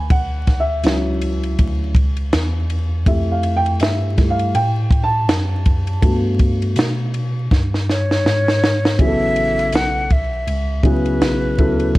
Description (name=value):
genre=hip hop, jazz-hop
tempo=81 BPM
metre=4/4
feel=swing 59% on 16ths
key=A major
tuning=A4 = 440 Hz
part: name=dark upright piano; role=accompaniment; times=0.0-12.0 s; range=C#3 to A5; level=-20 LUFS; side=equal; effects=none
part: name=mellow tine electric piano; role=bass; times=0.0-12.0 s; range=A1 to B2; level=-20 LUFS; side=equal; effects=medium stereo tremolo
part: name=compact cocktail drum kit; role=drums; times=0.1-12.0 s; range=hi-hat, kick drum, ride cymbal, snare drum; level=-18 LUFS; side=equal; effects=none
part: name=breathy jazz flute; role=melody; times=7.9-12.0 s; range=B4 to F#5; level=-21 LUFS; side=left 1 dB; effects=none
room=studio ambience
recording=dark, warm production, vinyl crackle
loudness=-15 LUFS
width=side -18 dB against mid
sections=0.0-9.0 A section; 9.0-12.0 B section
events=upright piano solo 0.0-9.0; drum fill 7.5-9.0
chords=0.0 Dmaj9; 3.1 Fmaj9; 6.0 Gmaj9; 9.0 Amaj9